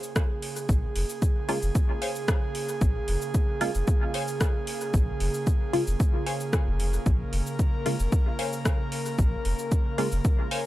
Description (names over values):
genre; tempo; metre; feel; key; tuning
dub techno; 113 BPM; 4/4; straight; Bb minor; A4 = 437 Hz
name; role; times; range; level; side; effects
airy breathy pad; sustained chords; 0.0-10.7 s; Db3 to Bb4; -32 LUFS; right 2 dB; chorus, sidechain pumping
deep house drum kit; drums; 0.0-10.6 s; cabasa, hi-hat, rim click; -35 LUFS; equal; overdrive, dub echo
electronic kick drum; drums; 0.2-10.4 s; none; -24 LUFS; equal; overdrive
soft dub sub bass; bass; 0.7-10.2 s; F1 to Bb1; -27 LUFS; equal; sidechain pumping
filtered dub chord stab; stabs; 1.5-10.1 s; Db3 to F4; -30 LUFS; equal; chorus, phaser, sidechain pumping, dub echo
wavetable chord stab; riff; 2.0-10.6 s; C5 to Ab5; -36 LUFS; left 2 dB; sidechain pumping, dub echo
room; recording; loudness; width
digital ambience; dry, gritty hardware recording; -24 LUFS; side -16 dB against mid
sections
0.0-10.7 A section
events
none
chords
0.0 Bbm7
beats
0.16 | 0.69 1.22 1.75 2.28 | 2.81 3.35 3.88 4.41 | 4.94 5.47 6.00 6.53 | 7.06 7.59 8.12 8.65 | 9.19 9.72 10.25